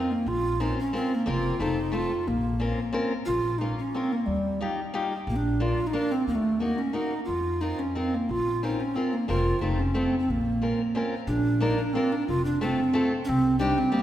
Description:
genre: musette waltz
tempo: 180 BPM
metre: 3/4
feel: swing 54% on 8ths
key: Bb harmonic minor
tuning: A4 = 439 Hz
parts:
  - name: breathy mellow bass recorder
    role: melody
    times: 0.0-14.0 s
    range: G3 to F4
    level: -26 LUFS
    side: right 1 dB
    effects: none
  - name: picked steel-string acoustic guitar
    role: accompaniment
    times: 0.0-14.0 s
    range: G3 to Bb4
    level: -31 LUFS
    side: left 2 dB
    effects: none
  - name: upright bass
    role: bass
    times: 0.3-13.7 s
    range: F1 to F2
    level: -30 LUFS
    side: equal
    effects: none
room: wet concert hall reverb, RT60 2.2 s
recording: recorded in a church or concert hall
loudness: -24 LUFS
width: side -12 dB against mid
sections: 0.0-3.3 A section; 3.3-11.3 A section; 11.3-14.0 B section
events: none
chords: 0.3 Bbmadd9; 1.3 Fsus4; 1.6 F; 2.3 Bbmadd9; 3.3 Bbm; 4.3 Ebadd9; 5.3 Bb; 6.3 Ebm; 7.3 F7sus4; 8.3 Bbmadd9; 9.3 Fsus4; 9.6 F; 10.3 Bbmadd9; 11.3 Bb; 12.3 F; 13.3 Cm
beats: | 0.26 0.60 0.93 | 1.26 1.60 1.93 | 2.26 2.60 2.94 | 3.27 3.61 3.94 | 4.27 4.61 4.94 | 5.27 5.61 5.94 | 6.28 6.61 6.95 | 7.29 7.62 7.96 | 8.29 8.62 8.96 | 9.29 9.62 9.95 | 10.28 10.62 10.95 | 11.28 11.62 11.95 | 12.28 12.61 12.94 | 13.26 13.59 13.92

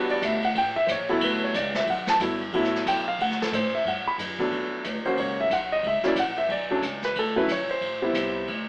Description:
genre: jazz piano trio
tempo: 182 BPM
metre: 4/4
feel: swing 62% on 8ths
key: D major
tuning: A4 = 441 Hz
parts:
  - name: clear grand piano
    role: melody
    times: 0.0-8.5 s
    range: F#3 to B5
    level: -24 LUFS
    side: equal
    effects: none
  - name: upright bass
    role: bass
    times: 0.0-8.7 s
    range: G1 to A2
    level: -35 LUFS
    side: equal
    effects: none
  - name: vintage brush drum kit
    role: drums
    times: 0.1-8.6 s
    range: hi-hat, kick drum, ride cymbal, snare drum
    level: -29 LUFS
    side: equal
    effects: none
room: moderate large studio reverb, RT60 0.8 s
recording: band playing live in one room, AM radio sound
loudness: -22 LUFS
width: side -24 dB against mid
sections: 0.0-3.9 A section; 3.9-8.7 A section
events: grand piano solo 0.0-8.7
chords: 0.0 Em7; 0.6 A5; 1.2 D6; 3.2 D5; 3.9 Gmaj7; 5.2 F#7; 6.5 Bm7; 7.8 Am7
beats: 0.22 0.55 0.88 | 1.21 1.54 1.87 2.20 | 2.53 2.86 3.19 3.52 | 3.85 4.18 4.51 4.85 | 5.18 5.51 5.84 6.17 | 6.50 6.83 7.16 7.49 | 7.82 8.14 8.47

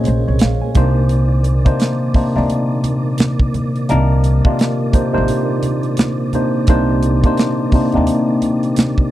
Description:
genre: R&B, neo-soul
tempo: 86 BPM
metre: 4/4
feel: swing 59% on 16ths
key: unclear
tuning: A4 = 440 Hz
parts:
  - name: tine electric piano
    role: accompaniment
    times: 0.0-9.1 s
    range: Bb2 to Ab5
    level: -16 LUFS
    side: left 1 dB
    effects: phaser
  - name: mellow tonewheel organ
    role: sustained chords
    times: 0.0-9.1 s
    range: Bb2 to D5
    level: -26 LUFS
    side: right 4 dB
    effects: fast rotary speaker, chorus vibrato
  - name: upright bass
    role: bass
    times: 0.0-8.1 s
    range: A1 to Eb2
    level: -17 LUFS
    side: equal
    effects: none
  - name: congas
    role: percussion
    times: 0.0-9.0 s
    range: none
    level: -28 LUFS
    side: right 3 dB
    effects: none
  - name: tight funk drum kit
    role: drums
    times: 0.1-9.1 s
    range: hi-hat, kick drum, snare drum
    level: -14 LUFS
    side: right 1 dB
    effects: none
room: little or no reverb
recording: dry, close 1970s-style studio recording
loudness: -13 LUFS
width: side -14 dB against mid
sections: 0.0-9.1 A section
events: none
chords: 0.0 Bbm9; 0.7 Cm9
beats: 0.40 | 1.10 1.80 2.49 3.19 | 3.89 4.59 5.28 5.98 | 6.68 7.38 8.07 8.77

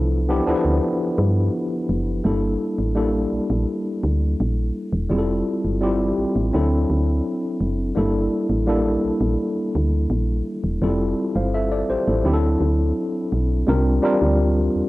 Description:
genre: lush 1970s-style soul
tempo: 84 BPM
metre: 4/4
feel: straight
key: G dorian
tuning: A4 = 439 Hz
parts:
  - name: mellow tine electric piano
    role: accompaniment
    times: 0.0-14.9 s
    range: F3 to F5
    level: -21 LUFS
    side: left 1 dB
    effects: medium stereo tremolo, cassette tape, plate reverb
  - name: woody FM bass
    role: bass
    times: 0.0-14.8 s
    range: E1 to G2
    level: -21 LUFS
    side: equal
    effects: tube saturation
room: moderate studio reverb, RT60 0.5 s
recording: home recording on cassette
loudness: -19 LUFS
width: side -18 dB against mid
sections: 0.0-2.2 A section; 2.2-13.7 B section; 13.7-14.9 C section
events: none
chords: 0.0 G13; 2.2 Gm69; 5.1 Fmaj7; 6.5 D7; 8.0 Gm69; 10.8 Fmaj7; 12.2 D7; 13.7 C9sus4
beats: 0.11 0.82 1.54 | 2.25 2.96 3.68 4.39 | 5.11 5.82 6.54 7.25 | 7.96 8.68 9.39 10.11 | 10.82 11.54 12.25 12.96 | 13.68 14.39

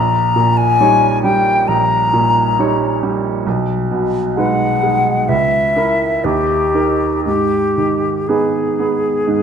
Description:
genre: classical, romantic duo for flute and grand piano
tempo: 57-69 BPM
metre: 4/4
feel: rubato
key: G# minor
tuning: A4 = 440 Hz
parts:
  - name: bright silver concert flute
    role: melody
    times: 0.0-9.4 s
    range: G4 to A#5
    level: -15 LUFS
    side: left 3 dB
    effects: none
  - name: bright baby grand piano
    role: accompaniment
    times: 0.0-9.4 s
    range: A#1 to C#5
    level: -16 LUFS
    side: right 3 dB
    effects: none
room: moderate recital hall reverb, RT60 1.6 s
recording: dark, warm production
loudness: -13 LUFS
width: side -7 dB against mid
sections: 0.0-9.4 A section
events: none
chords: 0.0 D#7/A#; 3.5 G#m/B; 5.3 A#dim/C#; 6.2 D#; 7.2 G#m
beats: 0.80 1.69 2.59 | 3.46 4.36 5.29 6.24 | 7.25 8.28 9.27

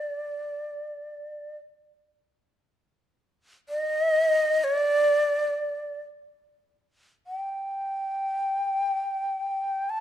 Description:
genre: japanese traditional, Japanese chamber music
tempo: free time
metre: none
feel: none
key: unclear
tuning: A4 = 440 Hz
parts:
  - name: breathy bright shakuhachi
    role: solo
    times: 0.0-10.0 s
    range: D5 to A5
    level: -25 LUFS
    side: equal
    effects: none
room: moderate recital hall reverb, RT60 1.4 s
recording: dark, warm production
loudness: -24 LUFS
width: side -11 dB against mid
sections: 0.0-6.2 A section; 6.2-10.0 A section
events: none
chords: none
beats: free time

